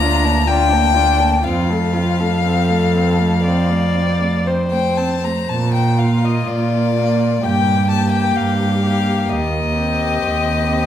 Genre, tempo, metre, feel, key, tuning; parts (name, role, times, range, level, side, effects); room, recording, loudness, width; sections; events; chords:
classical, slow romantic movement for string quartet; 58-65 BPM; 4/4; rubato; Bb major; A4 = 440 Hz
warm violin; melody; 0.0-10.9 s; D5 to Bb5; -20 LUFS; left 6 dB
warm violin; second line; 0.0-10.9 s; D4 to D5; -23 LUFS; left 3 dB
warm viola; accompaniment; 0.0-10.9 s; A3 to D4; -22 LUFS; right 2 dB
warm cello; bass; 0.0-10.9 s; D2 to Bb2; -18 LUFS; right 2 dB
wet recital hall reverb, RT60 1.5 s; heard from further back in the room; -14 LUFS; side -10 dB against mid
0.0-10.9 A section
0.0 Bb/D; 1.4 F; 5.5 Bb; 7.4 Gm; 9.3 Cm/Eb